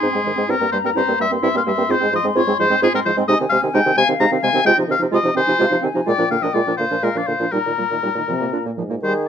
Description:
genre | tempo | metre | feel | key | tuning
quick classical-period movement for wind quintet | 86 BPM (dotted quarters) | 6/8 | rubato | F minor, Eb major from 3.3 s | A4 = 436 Hz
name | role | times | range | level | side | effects
mellow concert flute | melody | 0.0-9.3 s | Ab4 to C6 | -25 LUFS | left 5 dB | none
clear oboe | second line | 0.0-9.1 s | Ab4 to Bb5 | -20 LUFS | left 2 dB | none
mellow French horn | accompaniment | 0.0-9.1 s | Ab2 to C4 | -24 LUFS | left 2 dB | none
mellow clarinet | accompaniment | 0.0-8.9 s | F3 to F4 | -25 LUFS | right 6 dB | none
mellow bassoon | bass | 0.0-9.3 s | G2 to Eb3 | -22 LUFS | right 2 dB | none
room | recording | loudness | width
light reverb | close, detailed microphones | -16 LUFS | side -8 dB against mid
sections
0.0-9.0 A section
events
none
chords
0.5 C7/G; 1.9 Fm/Ab; 3.3 Ab/C; 4.7 Fm7/C; 6.1 Bb; 7.5 Eb/Bb; 8.3 N.C.

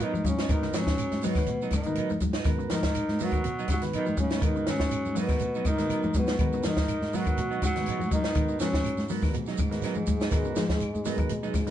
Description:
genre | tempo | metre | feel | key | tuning
afrobeat | 122 BPM | 4/4 | swing 53% on 16ths | G# dorian | A4 = 440 Hz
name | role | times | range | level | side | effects
trombone with bucket mute | melody | 0.0-11.7 s | G#3 to F#4 | -31 LUFS | left 1 dB | none
raspy tenor saxophone | second line | 0.0-11.7 s | G#2 to F#3 | -38 LUFS | right 3 dB | none
combo organ | accompaniment | 0.0-11.7 s | B3 to C#5 | -38 LUFS | right 5 dB | spring reverb
clean electric guitar | stabs | 0.0-11.6 s | F#3 to D#4 | -37 LUFS | right 7 dB | none
compact cocktail drum kit | drums | 0.0-11.7 s | hi-hat, kick drum, snare drum | -29 LUFS | equal | none
claves | percussion | 0.0-11.7 s | none | -47 LUFS | left 4 dB | none
shekere | percussion | 0.0-11.7 s | none | -40 LUFS | right 6 dB | none
semi-hollow electric guitar | arpeggios | 0.1-11.7 s | C#3 to F#3 | -34 LUFS | left 6 dB | none
fingered electric bass | bass | 0.1-11.7 s | G#2 to B2 | -34 LUFS | equal | none
congas | percussion | 0.1-11.7 s | none | -36 LUFS | right 1 dB | none
room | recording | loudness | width
moderate studio reverb, RT60 0.8 s | band playing live in one room, nothing above 10.3 kHz | -25 LUFS | side -11 dB against mid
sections
0.0-11.7 A section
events
none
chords
0.0 G#m7

